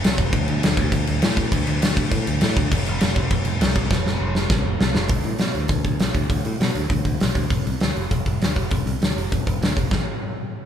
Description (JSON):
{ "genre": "punk rock", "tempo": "200 BPM", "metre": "4/4", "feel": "straight", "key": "unclear", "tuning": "A4 = 443 Hz", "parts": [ { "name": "picked electric bass", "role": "bass", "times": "0.0-10.1 s", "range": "F1 to B2", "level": "-24 LUFS", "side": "equal", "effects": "none" }, { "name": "big rock drum kit", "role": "drums", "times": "0.0-10.0 s", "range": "crash cymbal, hi-hat, kick drum, snare drum", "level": "-20 LUFS", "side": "equal", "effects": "none" } ], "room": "light reverb", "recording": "band playing live in one room", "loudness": "-19 LUFS", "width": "side -9 dB against mid", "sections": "0.0-5.1 A section; 5.1-9.9 B section", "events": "drum fill 3.9-5.1", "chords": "none" }